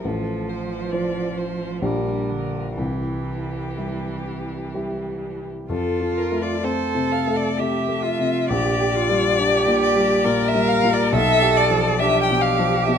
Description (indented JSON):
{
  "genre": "classical, slow romantic movement for piano trio",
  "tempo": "60-70 BPM",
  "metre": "3/4",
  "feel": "rubato",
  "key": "F major",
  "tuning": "A4 = 440 Hz",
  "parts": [
    { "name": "warm violin", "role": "melody", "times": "0.0-13.0 s", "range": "G4 to G5", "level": "-24 LUFS", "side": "left 6 dB", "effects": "none" },
    { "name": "rich cello", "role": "second line", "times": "0.0-13.0 s", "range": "D3 to Bb4", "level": "-24 LUFS", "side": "right 7 dB", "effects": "none" },
    { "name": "warm grand piano", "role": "accompaniment", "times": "0.0-13.0 s", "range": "A1 to C5", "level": "-23 LUFS", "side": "left 2 dB", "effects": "none" }
  ],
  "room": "moderate recital hall reverb, RT60 1.6 s",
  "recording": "close, detailed microphones",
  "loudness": "-19 LUFS",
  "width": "side -7 dB against mid",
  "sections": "0.0-5.7 A section; 5.7-13.0 B section",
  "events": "none",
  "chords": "0.0 F/A; 1.8 Gm/Bb; 2.8 C; 5.7 F; 8.5 Gm/Bb; 11.1 G7/B"
}